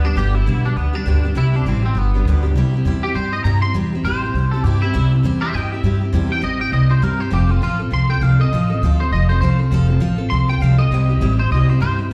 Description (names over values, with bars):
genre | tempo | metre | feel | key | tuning
rockabilly | 201 BPM | 4/4 | swing 59% on 8ths | C major | A4 = 438 Hz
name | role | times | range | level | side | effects
twangy electric guitar | melody | 0.0-12.0 s | B3 to C6 | -26 LUFS | equal | analog chorus, slapback echo, tape echo
picked steel-string acoustic guitar | accompaniment | 0.0-12.1 s | G2 to A4 | -25 LUFS | equal | none
upright bass | bass | 0.0-12.1 s | F1 to G2 | -19 LUFS | equal | none
room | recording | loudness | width
small room ambience | live gig heard through the venue's PA, club reverb | -17 LUFS | mono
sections
0.0-2.6 A section; 2.6-12.1 B section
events
clean electric guitar solo 2.6-12.1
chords
0.0 G; 1.4 C; 2.0 G; 2.6 C; 7.3 F; 10.9 C